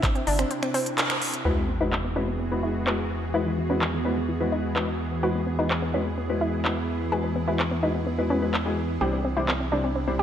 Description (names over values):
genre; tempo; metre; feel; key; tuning
progressive house; 127 BPM; 4/4; straight; E major; A4 = 440 Hz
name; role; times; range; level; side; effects
wide unison pluck; melody; 0.0-0.9 s; none; barely audible; none; none
evolving wavetable pad; sustained chords; 0.0-10.2 s; C3 to G#4; -30 LUFS; right 1 dB; ensemble chorus, built-in reverb, sidechain pumping
analog pluck; arpeggios; 0.0-10.2 s; E3 to G#4; -30 LUFS; equal; chorus, sidechain pumping, digital delay
pop drum kit; drums; 0.0-9.6 s; finger snaps, handclaps, hi-hat; -29 LUFS; equal; low-pass filter on hats, low-pass filter on snare
round analog bass; bass; 0.3-10.2 s; G1 to E2; -31 LUFS; equal; sidechain pumping
felt-muted upright piano; stabs; 1.5-10.2 s; C3 to C5; -29 LUFS; left 3 dB; sidechain pumping, low-pass filter, digital delay
sub drop; sound effects; 1.5-3.3 s; none; -32 LUFS; equal; none
room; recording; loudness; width
moderate concert hall reverb, RT60 2.4 s; none; -23 LUFS; side -9 dB against mid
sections
0.0-1.5 A section; 1.5-10.2 B section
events
break 0.5-1.5; band accent 1.0; impact 1.5-3.3; filter sweep on synth arpeggio sound 1.5-10.2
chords
0.0 Cadd9; 1.5 Eadd9; 9.0 Cadd9